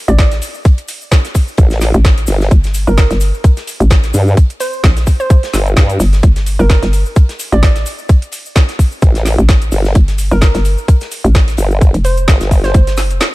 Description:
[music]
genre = bass house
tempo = 129 BPM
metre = 4/4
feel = swing 56% on 16ths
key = unclear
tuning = A4 = 441 Hz
[part]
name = hollow square pluck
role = melody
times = 0.1-13.3 s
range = Bb4 to D5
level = -22 LUFS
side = right 3 dB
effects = chorus, cassette tape, ping-pong delay
[part]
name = hollow knocking FM bass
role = bass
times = 0.1-13.2 s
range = F1 to Bb1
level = -12 LUFS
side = equal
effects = tube saturation, sidechain pumping
[part]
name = garage drum kit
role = drums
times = 0.1-13.3 s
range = hi-hat, snare drum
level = -21 LUFS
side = right 1 dB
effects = overdrive
[part]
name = cabasa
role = percussion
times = 0.1-13.3 s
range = none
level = -30 LUFS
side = left 6 dB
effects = none
[part]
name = electronic kick drum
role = drums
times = 0.2-12.8 s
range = none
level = -8 LUFS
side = equal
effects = none
[part]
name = tight metal drum kit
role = drums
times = 0.2-13.3 s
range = hi-hat, snare drum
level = -30 LUFS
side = left 2 dB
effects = sidechain pumping on hats, high-pass filter on hats, high-pass filter on snare, high-pass filter on room
[part]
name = formant-sweep wobble bass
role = bass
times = 1.6-6.0, 9.0-12.7 s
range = G1 to G2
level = -12 LUFS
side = equal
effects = chorus, overdrive, sidechain pumping
[sound]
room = studio reverb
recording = dark, warm production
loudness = -9 LUFS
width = side -20 dB against mid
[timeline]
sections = 0.0-13.3 A section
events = none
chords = 0.0 Fadd9 (rootless)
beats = 0.19 | 0.65 1.12 1.58 2.05 | 2.51 2.98 3.44 3.91 | 4.37 4.84 5.30 5.77 | 6.23 6.70 7.16 7.63 | 8.09 8.56 9.02 9.49 | 9.95 10.42 10.88 11.35 | 11.81 12.28 12.74 13.21

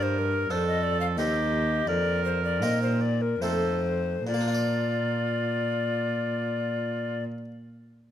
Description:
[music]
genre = classical, baroque-style sonata movement with continuo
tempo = 68-93 BPM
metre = 3/4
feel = straight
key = Bb major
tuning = A4 = 440 Hz
[part]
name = mellow hollow tenor recorder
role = melody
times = 0.0-7.2 s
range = Bb4 to F5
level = -29 LUFS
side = left 7 dB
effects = none
[part]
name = warm oboe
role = second line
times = 0.0-7.3 s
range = F4 to Bb4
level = -32 LUFS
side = right 6 dB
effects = none
[part]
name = harpsichord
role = accompaniment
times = 0.0-7.5 s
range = Eb2 to D5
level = -33 LUFS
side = left 1 dB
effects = none
[part]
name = rich cello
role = bass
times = 0.0-7.2 s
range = Eb2 to Bb2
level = -29 LUFS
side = right 2 dB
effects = none
[sound]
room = moderate recital hall reverb, RT60 1.7 s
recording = close, detailed microphones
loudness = -24 LUFS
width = side -10 dB against mid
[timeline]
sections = 0.0-4.3 A section; 4.3-8.1 B section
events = slowing down 0.0-4.3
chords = 0.0 Gm; 1.2 Cm/Eb; 1.9 F7sus4; 3.4 F7; 4.3 Bb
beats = 0.51 1.18 | 1.89 2.63 3.42 | 4.28 5.15 6.03 | 6.91

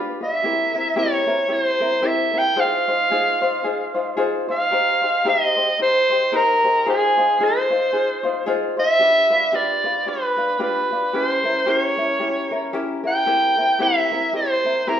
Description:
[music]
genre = Hawaiian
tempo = 112 BPM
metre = 4/4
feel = swing 58% on 8ths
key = unclear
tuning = A4 = 440 Hz
[part]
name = ukulele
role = accompaniment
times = 0.0-15.0 s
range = C4 to C5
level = -23 LUFS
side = left 3 dB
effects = none
[part]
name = breathy soprano saxophone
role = melody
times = 0.2-15.0 s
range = Ab4 to G5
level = -18 LUFS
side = right 1 dB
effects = none
[sound]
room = wet large studio reverb, RT60 1.1 s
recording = band playing live in one room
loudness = -17 LUFS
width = side -9 dB against mid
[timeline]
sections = 0.0-15.0 A section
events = none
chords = 0.4 C7; 2.6 Fm7; 4.7 Cm7; 6.9 Fm7; 9.0 G7; 11.1 C7b9; 13.3 C7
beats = | 0.42 0.96 1.50 2.03 | 2.57 3.11 3.64 4.18 | 4.71 5.25 5.78 6.32 | 6.85 7.39 7.92 8.46 | 8.99 9.53 10.06 10.59 | 11.13 11.66 12.20 12.73 | 13.27 13.80 14.33 14.87

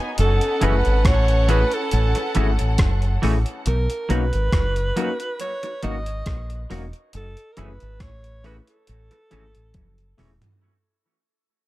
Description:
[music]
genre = lovers rock reggae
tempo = 69 BPM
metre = 4/4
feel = swing 54% on 16ths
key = unclear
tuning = A4 = 440 Hz
[part]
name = clear studio violin section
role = second line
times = 0.0-3.6 s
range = B3 to G#5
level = -28 LUFS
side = left 1 dB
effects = tape echo
[part]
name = clear alto saxophone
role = melody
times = 0.2-10.2 s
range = A4 to D#5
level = -26 LUFS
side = right 2 dB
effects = tape echo
[part]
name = deep dub fingered electric bass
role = bass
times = 0.2-10.4 s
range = E1 to B1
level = -21 LUFS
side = equal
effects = none
[part]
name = gated 80s digital drum machine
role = drums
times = 0.2-10.6 s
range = hi-hat, kick drum, rim click, toms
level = -24 LUFS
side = equal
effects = gated reverb, overdrive
[part]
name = overdriven tine electric piano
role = accompaniment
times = 0.6-10.3 s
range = A3 to G#4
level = -30 LUFS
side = left 5 dB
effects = none
[part]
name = semi-hollow electric guitar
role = stabs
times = 0.6-10.3 s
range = E3 to F#4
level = -30 LUFS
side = right 2 dB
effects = analog chorus, tape echo
[sound]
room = little or no reverb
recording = dark, warm production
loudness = -18 LUFS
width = side -17 dB against mid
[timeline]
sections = 0.0-10.6 A section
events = fade-out 0.0-10.6; drum fill 9.7-10.6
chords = 0.2 F#m7; 3.7 Bmaj7; 7.1 F#m7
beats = | 0.18 1.05 1.92 2.79 | 3.66 4.53 5.40 6.27 | 7.14 8.01 8.88 9.75

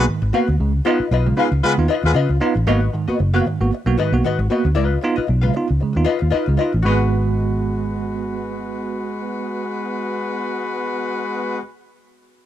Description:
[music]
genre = funk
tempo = 115 BPM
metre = 4/4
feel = swing 56% on 16ths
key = G# dorian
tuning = A4 = 440 Hz
[part]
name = warm horn section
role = second line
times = 0.0-2.1, 6.8-11.6 s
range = G#3 to B4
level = -24 LUFS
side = left 3 dB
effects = none
[part]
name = archtop guitar, miked and amplified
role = accompaniment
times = 0.0-11.7 s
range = E#4 to E#5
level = -23 LUFS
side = left 9 dB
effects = wah
[part]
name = bell-like tine electric piano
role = stabs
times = 0.0-11.6 s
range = G#2 to F#4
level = -22 LUFS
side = right 5 dB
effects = fast stereo tremolo
[part]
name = vintage muted fingered electric bass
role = bass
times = 0.0-11.6 s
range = F#1 to C#3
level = -18 LUFS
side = equal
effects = none
[sound]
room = digital ambience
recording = dry, close 1970s-style studio recording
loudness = -17 LUFS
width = side -11 dB against mid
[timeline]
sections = 0.0-2.7 A section; 2.7-6.8 B section; 6.8-11.0 C section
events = none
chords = 0.0 G#m7; 0.6 C#9; 2.7 G#m7; 4.8 C#9; 6.8 G#m7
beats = 0.08 | 0.60 1.12 1.64 2.16 | 2.68 3.20 3.72 4.24 | 4.76 5.28 5.80 6.33 | 6.85 7.37 7.89 8.41 | 8.94 9.46 9.98 10.50

